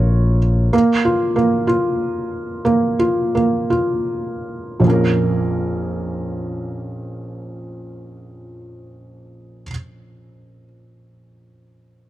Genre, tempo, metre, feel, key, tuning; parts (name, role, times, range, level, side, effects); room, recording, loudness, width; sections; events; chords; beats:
pop; 50-64 BPM (dotted quarters); 6/8; straight; Bb minor; A4 = 439 Hz
felt-muted upright piano; accompaniment; 0.0-12.1 s; Bb1 to Db5; -18 LUFS; right 1 dB
sustaining fretless electric bass; bass; 0.0-0.7 s; Bb1; -14 LUFS; equal
little or no reverb; dry, close 1970s-style studio recording; -16 LUFS; side -14 dB against mid
0.0-4.8 A section; 4.8-9.6 B section
slowing down 0.7-4.8
0.0 Bbm; 0.7 Bb5; 4.8 Bbm
| 0.73 1.68 | 2.66 3.71 | 4.85 6.04 | 7.24 8.42